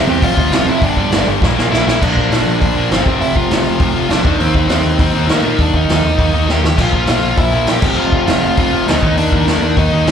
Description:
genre	punk rock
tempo	201 BPM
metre	4/4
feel	straight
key	unclear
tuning	A4 = 442 Hz
part	dark smooth lead guitar	melody	0.0-10.1 s	Bb3 to G5	-19 LUFS	equal	overdrive, slapback echo
part	crunchy overdriven guitar	riff	0.0-10.1 s	F2 to Eb4	-20 LUFS	right 11 dB	slapback echo
part	tight distorted guitar	riff	0.0-10.1 s	F2 to Eb4	-19 LUFS	left 13 dB	distortion, slapback echo
part	growling picked electric bass	bass	0.0-10.1 s	F1 to Eb3	-18 LUFS	equal	overdrive
part	raw garage drum kit	drums	0.2-10.1 s	crash cymbal, hi-hat, kick drum, snare drum, splash cymbal	-17 LUFS	equal	none
room	small room ambience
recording	live gig heard through the venue's PA, club reverb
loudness	-11 LUFS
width	side -8 dB against mid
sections	0.0-2.0 A section; 2.0-10.1 B section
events	drum fill 1.4-2.0, 6.5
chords	0.2 F5; 0.8 G5; 1.4 Bb5; 2.0 Bb; 3.1 F5; 4.3 Eb; 6.8 Bb5; 7.8 F5; 9.0 Eb5

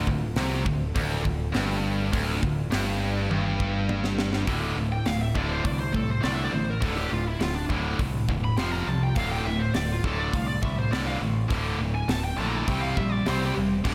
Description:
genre	heavy metal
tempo	102 BPM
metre	4/4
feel	straight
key	D minor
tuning	A4 = 440 Hz
part	airy breathy pad	sustained chords	0.0-4.5, 13.9 s	D3 to A4	-44 LUFS	equal	none
part	high-gain distorted guitar	riff	0.0-13.9 s	D2 to C4	-33 LUFS	equal	distortion
part	tight distorted guitar	riff	0.0-13.9 s	D2 to C4	-32 LUFS	equal	distortion
part	growling picked electric bass	bass	0.0-13.9 s	D1 to C2	-32 LUFS	equal	overdrive
part	tight metal drum kit	drums	0.1-13.9 s	crash cymbal, hi-hat, kick drum, snare drum, toms	-33 LUFS	equal	none
part	high-gain lead guitar	melody	4.9-13.5 s	D4 to C6	-35 LUFS	equal	distortion, slapback echo
room	moderate lush hall reverb, RT60 2.4 s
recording	big arena sound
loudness	-26 LUFS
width	mono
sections	0.0-4.5 A section; 4.5-13.9 B section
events	drum fill 3.3-4.5; lead electric guitar solo 4.5-13.9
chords	0.0 Dm; 4.5 D5; 8.6 F5; 9.2 D5; 12.7 C5

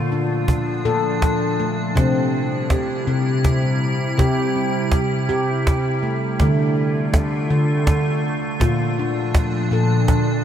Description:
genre	world meditative, meditative tuned percussion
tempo	54 BPM (dotted quarters)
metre	6/8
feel	straight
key	unclear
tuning	A4 = 441 Hz
part	icy glass pad	sustained chords	0.0-10.4 s	Bb2 to F4	-22 LUFS	right 1 dB	chorus, built-in reverb
part	handpan	arpeggios	0.0-10.4 s	Bb2 to A4	-20 LUFS	left 1 dB	none
part	cajon	percussion	0.1-10.3 s	none	-20 LUFS	equal	none
room	moderate huge ambient reverb, RT60 8.7 s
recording	dreamy mix soaked in reverb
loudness	-17 LUFS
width	side -9 dB against mid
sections	0.0-10.4 A section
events	none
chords	0.0 Bb; 2.0 C; 6.4 Dm; 8.6 Bb

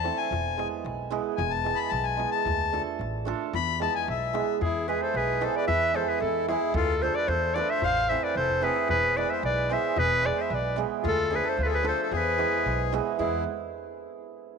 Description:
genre	balkan folk, Balkan wedding band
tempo	112 BPM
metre	2/4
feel	straight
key	E phrygian dominant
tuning	A4 = 440 Hz
part	accordion	second line	0.0-13.4 s	E4 to B5	-30 LUFS	left 11 dB	none
part	hammered dulcimer	accompaniment	0.0-13.4 s	E3 to A4	-30 LUFS	right 12 dB	none
part	upright bass	bass	0.0-13.4 s	E1 to E2	-33 LUFS	equal	none
part	darbuka	percussion	0.1-13.5 s	none	-36 LUFS	left 3 dB	none
part	clear clarinet	melody	4.6-13.5 s	G#4 to F5	-27 LUFS	equal	none
room	moderate plate reverb, RT60 3.3 s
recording	1960s-style stereo with parts hard left and right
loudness	-24 LUFS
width	side -6 dB against mid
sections	0.0-4.6 A section; 4.6-13.2 B section; 13.2-14.3 C section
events	accordion solo 0.0-4.6; drum fill 8.4-8.9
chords	0.3 E; 2.5 Dm; 3.5 E; 6.8 Dm; 7.8 Am; 8.9 E; 11.0 Dm; 12.1 E

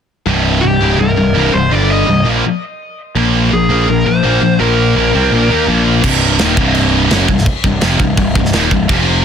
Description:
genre	heavy metal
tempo	167 BPM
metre	4/4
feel	straight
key	C minor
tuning	A4 = 439 Hz
part	heavy high-gain guitar	riff	0.3-9.2 s	C2 to Eb4	-16 LUFS	left 11 dB	distortion
part	sludgy distorted guitar	riff	0.3-9.2 s	C2 to Eb4	-16 LUFS	right 9 dB	overdrive
part	fuzz picked electric bass	bass	0.3-9.2 s	C1 to Eb2	-16 LUFS	equal	overdrive
part	high-gain lead guitar	melody	0.6-5.6 s	G4 to Eb5	-17 LUFS	left 1 dB	distortion, tape echo
part	tight metal drum kit	drums	6.0-9.0 s	crash cymbal, kick drum, snare drum	-15 LUFS	equal	soft clipping on kick
room	small room ambience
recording	dense, heavily limited modern master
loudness	-10 LUFS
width	side -8 dB against mid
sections	0.3-6.0 A section; 6.0-9.2 B section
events	none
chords	0.3 C5; 1.7 G5; 2.1 C5; 3.2 Bb5; 6.0 Cm

